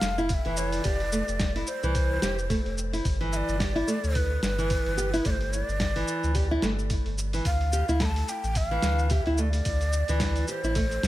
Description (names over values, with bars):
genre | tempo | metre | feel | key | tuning
organic downtempo | 109 BPM | 4/4 | swing 58% on 16ths | unclear | A4 = 440 Hz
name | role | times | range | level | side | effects
breathy mellow ney | melody | 0.0-11.1 s | B4 to B5 | -32 LUFS | equal | ping-pong delay
warm sub bass | bass | 0.0-11.1 s | F1 to D2 | -28 LUFS | equal | none
dusty soul sampler-style drum kit | drums | 0.0-11.1 s | hi-hat, shaker, snare drum | -33 LUFS | equal | studio reverb
bronze singing bowl | texture | 0.0-11.1 s | none | barely audible | none | none
nylon-string guitar | arpeggios | 0.2-10.8 s | E3 to G4 | -30 LUFS | right 1 dB | digital delay
electronic kick drum | drums | 0.3-10.9 s | none | -30 LUFS | equal | studio reverb
room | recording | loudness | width
small room ambience | none | -24 LUFS | side -15 dB against mid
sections
0.0-11.1 A section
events
none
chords
0.0 Fmaj7; 3.1 G; 7.5 Dm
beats
0.30 | 0.85 1.40 1.95 2.50 | 3.05 3.60 4.15 4.70 | 5.25 5.80 6.35 6.90 | 7.46 8.01 8.56 9.11 | 9.66 10.21 10.76